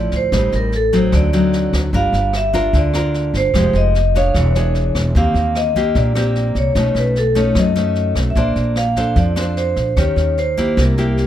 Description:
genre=bossa nova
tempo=149 BPM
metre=4/4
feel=straight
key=unclear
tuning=A4 = 441 Hz
part: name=vibraphone with medium hard mallets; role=melody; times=0.0-11.3 s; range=A4 to F5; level=-19 LUFS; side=right 1 dB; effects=none
part: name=nylon-string guitar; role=accompaniment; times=0.0-11.3 s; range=A2 to C#5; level=-19 LUFS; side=left 2 dB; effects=none
part: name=upright bass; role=bass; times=0.0-11.3 s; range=E1 to F#2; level=-18 LUFS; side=equal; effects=none
part: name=jazz brush drum kit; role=drums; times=0.1-11.2 s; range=kick drum, rim click, snare drum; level=-24 LUFS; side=equal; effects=none
room=little or no reverb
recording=none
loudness=-14 LUFS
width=side -11 dB against mid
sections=0.0-11.3 A section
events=none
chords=0.3 Am7b5; 1.1 D7b9; 1.9 Gm7; 3.5 Fm9; 4.3 E6; 5.1 Eb6; 6.8 B9; 8.4 Bbmaj9; 10.0 Eb6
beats=| 0.32 0.72 1.13 1.53 | 1.93 2.33 2.73 3.13 | 3.54 3.94 4.34 4.74 | 5.14 5.55 5.95 6.35 | 6.75 7.15 7.56 7.96 | 8.36 8.76 9.16 9.57 | 9.97 10.37 10.77 11.18

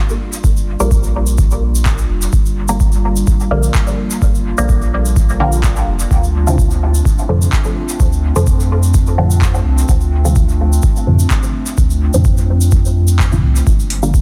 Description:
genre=dub techno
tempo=127 BPM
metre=4/4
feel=straight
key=G minor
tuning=A4 = 440 Hz
part: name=warbly tape-like pad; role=sustained chords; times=0.0-14.2 s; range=G3 to F4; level=-26 LUFS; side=equal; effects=chorus, built-in reverb, sidechain pumping
part: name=egg shaker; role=percussion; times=0.1-14.2 s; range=none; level=-29 LUFS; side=equal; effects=none
part: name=soft dub sub bass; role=bass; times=0.4-14.2 s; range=F1 to F2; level=-17 LUFS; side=equal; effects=sidechain pumping
part: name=electronic kick drum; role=drums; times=0.4-14.2 s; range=none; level=-17 LUFS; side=equal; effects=none
part: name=filtered dub chord stab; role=stabs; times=0.8-14.2 s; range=A2 to Bb3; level=-23 LUFS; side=equal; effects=chorus, phaser, sidechain pumping, dub echo
part: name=booming analog drum machine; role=drums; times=1.9-14.0 s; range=handclaps, hi-hat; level=-28 LUFS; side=equal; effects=dub echo
room=little or no reverb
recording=dense, heavily limited modern master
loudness=-14 LUFS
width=mono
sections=0.0-14.2 A section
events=filter sweep on synth stab 0.0-14.2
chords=0.0 Gm7; 6.1 Dm7; 13.7 Gm7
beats=| 0.44 0.91 1.38 1.86 | 2.33 2.80 3.27 3.75 | 4.22 4.69 5.16 5.64 | 6.11 6.58 7.05 7.53 | 8.00 8.47 8.94 9.41 | 9.89 10.36 10.83 11.30 | 11.78 12.25 12.72 13.20 | 13.67 14.14

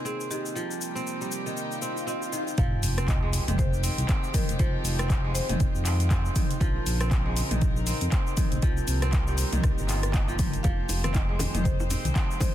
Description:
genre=afro house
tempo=119 BPM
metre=4/4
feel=swing 58% on 16ths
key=F minor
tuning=A4 = 440 Hz
part: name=marimba with medium hard mallets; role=melody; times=0.0-6.3, 10.1-12.5 s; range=G4 to F5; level=-39 LUFS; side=left 1 dB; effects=tape echo
part: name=warm chamber string section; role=sustained chords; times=0.0-12.5 s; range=C3 to C5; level=-37 LUFS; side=equal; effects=sidechain pumping
part: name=kora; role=arpeggios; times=0.0-12.5 s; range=Eb3 to F4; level=-34 LUFS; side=right 1 dB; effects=vintage 12-bit sampler grit, sidechain pumping, tape echo
part: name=deep house drum kit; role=drums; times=0.1-12.5 s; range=handclaps, hi-hat, rim click, shaker, toms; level=-32 LUFS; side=equal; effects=none
part: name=swell and sub drop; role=sound effects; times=1.8-4.6 s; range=none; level=-34 LUFS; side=equal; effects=none
part: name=smooth synth bass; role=bass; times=2.6-12.1 s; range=F1 to F2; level=-28 LUFS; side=equal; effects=sidechain pumping
part: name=electronic kick drum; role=drums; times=2.6-12.5 s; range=none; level=-25 LUFS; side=equal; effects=none
part: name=congas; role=percussion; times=10.6-12.1 s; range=none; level=-35 LUFS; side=left 3 dB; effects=none
part: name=bongos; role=percussion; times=10.9-12.5 s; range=none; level=-39 LUFS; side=right 2 dB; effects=none
room=little or no reverb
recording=dense, heavily limited modern master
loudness=-24 LUFS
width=side -12 dB against mid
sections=0.0-2.6 A section; 2.6-12.5 B section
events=swell 1.8-2.6; drop 2.6-12.5; impact 2.6-4.6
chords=0.0 Bbsus2; 0.6 Cm7; 2.6 Fm9; 6.6 Bbm9; 8.6 Cm7; 10.6 Fm9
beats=0.06 | 0.56 1.06 1.57 2.07 | 2.58 3.08 3.58 4.09 | 4.59 5.10 5.60 6.11 | 6.61 7.11 7.62 8.12 | 8.63 9.13 9.63 10.14 | 10.64 11.15 11.65 12.15

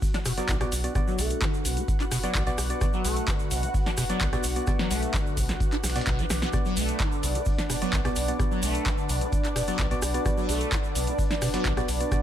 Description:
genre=acid house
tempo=129 BPM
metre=4/4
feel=straight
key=B minor pentatonic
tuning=A4 = 440 Hz
part: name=warm analog pad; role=sustained chords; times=0.0-12.2 s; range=D4 to F#5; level=-35 LUFS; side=equal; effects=chorus, sidechain pumping
part: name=dusty soul sampler-style drum kit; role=drums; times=0.0-12.2 s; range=hi-hat, snare drum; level=-43 LUFS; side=left 1 dB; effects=none
part: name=electronic kick drum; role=drums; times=0.0-12.2 s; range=none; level=-28 LUFS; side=equal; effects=none
part: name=egg shaker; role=percussion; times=0.0-12.2 s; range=none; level=-38 LUFS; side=right 4 dB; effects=none
part: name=deep dark ambient pad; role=texture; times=0.0-12.2 s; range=D4 to E6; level=-35 LUFS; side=equal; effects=chorus, built-in reverb, sidechain pumping
part: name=liquid acid bass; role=riff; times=0.1-12.2 s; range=B2 to D4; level=-32 LUFS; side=equal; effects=phaser, overdrive, ensemble chorus, sidechain pumping, digital delay
part: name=electro analog drum machine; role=drums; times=0.1-12.2 s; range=handclaps, hi-hat, rim click, snare drum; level=-32 LUFS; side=equal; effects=none
part: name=warm sub bass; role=bass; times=0.3-12.0 s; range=F#1 to B1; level=-31 LUFS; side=equal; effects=sidechain pumping
part: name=percussive organ stab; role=stabs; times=0.4-12.2 s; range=B3 to D5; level=-34 LUFS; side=right 1 dB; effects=chorus, digital delay
room=light reverb, digital ambience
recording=none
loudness=-24 LUFS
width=side -10 dB against mid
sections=0.0-12.2 A section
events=none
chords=0.0 Bm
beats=0.02 0.49 | 0.95 1.42 1.88 2.35 | 2.81 3.28 3.74 4.21 | 4.67 5.14 5.61 6.07 | 6.54 7.00 7.46 7.93 | 8.39 8.86 9.32 9.79 | 10.26 10.72 11.19 11.65 | 12.12

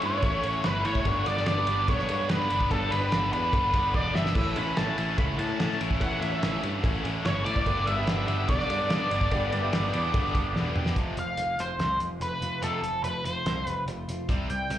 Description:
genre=classic rock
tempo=145 BPM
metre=4/4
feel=straight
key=unclear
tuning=A4 = 441 Hz
part: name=clear upright piano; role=accompaniment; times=0.0-11.0 s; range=D4 to B5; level=-40 LUFS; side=right 1 dB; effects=none
part: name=picked acoustic archtop guitar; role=accompaniment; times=0.0-14.8 s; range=F2 to A4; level=-41 LUFS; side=left 2 dB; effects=none
part: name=bright tonewheel organ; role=sustained chords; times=0.0-10.9 s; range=B3 to D5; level=-40 LUFS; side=right 1 dB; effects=none
part: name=tight distorted guitar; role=riff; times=0.0-14.5 s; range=F2 to E4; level=-32 LUFS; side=equal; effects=distortion, slapback echo
part: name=picked electric bass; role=bass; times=0.0-14.8 s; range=E1 to A2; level=-31 LUFS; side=equal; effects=none
part: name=cloth-damped thuddy drum kit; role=drums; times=0.0-14.8 s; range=crash cymbal, hi-hat, kick drum, ride cymbal, snare drum, toms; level=-30 LUFS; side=equal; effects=none
part: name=octave-fuzz lead guitar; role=melody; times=0.1-14.8 s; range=A4 to B5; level=-29 LUFS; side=equal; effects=wah, distortion, plate reverb, slapback echo
part: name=cowbell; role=percussion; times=0.2-10.6 s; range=none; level=-43 LUFS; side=equal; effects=slapback echo
room=light reverb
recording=live gig heard through the venue's PA, cassette tape, club reverb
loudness=-24 LUFS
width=side -12 dB against mid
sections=0.0-11.0 A section; 11.0-14.8 B section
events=drum fill 3.9-4.4, 10.6-11.0; upright piano fill 10.3-11.0; half time 11.0-14.8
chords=0.0 A; 1.1 G; 4.4 A; 7.7 G; 11.0 F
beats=0.23 0.64 | 1.05 1.47 1.88 2.29 | 2.71 3.12 3.54 3.95 | 4.36 4.77 5.19 5.60 | 6.01 6.42 6.84 7.25 | 7.66 8.07 8.49 8.90 | 9.31 9.72 10.14 10.55 | 10.96 11.38 11.79 12.21 | 12.62 13.04 13.45 13.87 | 14.29 14.70

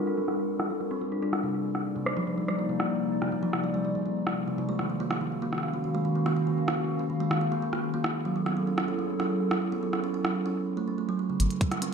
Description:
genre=IDM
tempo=143 BPM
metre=4/4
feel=straight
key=unclear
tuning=A4 = 444 Hz
part: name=warbly tape-like pad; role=sustained chords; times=0.0-11.9 s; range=C3 to F5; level=-30 LUFS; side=left 1 dB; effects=chorus, built-in reverb
part: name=kalimba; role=arpeggios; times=0.1-11.9 s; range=C3 to D4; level=-30 LUFS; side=right 2 dB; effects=vintage 12-bit sampler grit, low-pass filter, ping-pong delay
part: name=glitchy drum kit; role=drums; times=0.3-11.9 s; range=hi-hat, rim click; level=-33 LUFS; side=right 1 dB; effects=low-pass filter on hats, low-pass filter on snare, low-pass filter on perc, low-pass filter on toms, low-pass filter on room, gated reverb
part: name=round analog bass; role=bass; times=11.4-11.5 s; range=G1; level=-24 LUFS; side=left 1 dB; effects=none
part: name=electronic kick drum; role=drums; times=11.6-11.7 s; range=none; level=-27 LUFS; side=equal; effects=none
room=moderate plate reverb, RT60 1.8 s, digital ambience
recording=bright 1980s-style digital production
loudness=-26 LUFS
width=side -6 dB against mid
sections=0.0-11.4 A section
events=filter sweep on ambient pad 0.0-11.4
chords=0.0 Gm9; 1.3 Cm9; 4.7 Ebm9; 8.0 Gbm9; 11.4 Gm9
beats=0.07 0.49 0.91 | 1.33 1.75 2.17 2.59 | 3.01 3.43 3.85 4.27 | 4.69 5.11 5.53 5.95 | 6.37 6.78 7.20 7.62 | 8.04 8.46 8.88 9.30 | 9.72 10.14 10.56 10.98 | 11.40 11.82

